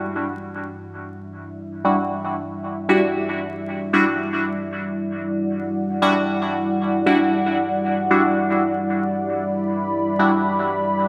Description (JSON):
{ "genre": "dub techno", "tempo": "115 BPM", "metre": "4/4", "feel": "straight", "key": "E minor", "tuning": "A4 = 440 Hz", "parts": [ { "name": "dark analog pad", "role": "sustained chords", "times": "0.0-11.1 s", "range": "G3 to B5", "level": "-25 LUFS", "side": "equal", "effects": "chorus" }, { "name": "resonant sweep polysynth", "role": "stabs", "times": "1.8-10.3 s", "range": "G3 to F#4", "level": "-24 LUFS", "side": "equal", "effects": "chorus, phaser, dub echo" } ], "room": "wet plate reverb, RT60 2.6 s", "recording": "bright 1980s-style digital production, vinyl crackle", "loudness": "-21 LUFS", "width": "mono", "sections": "0.0-11.1 A section", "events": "none", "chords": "0.0 Em9" }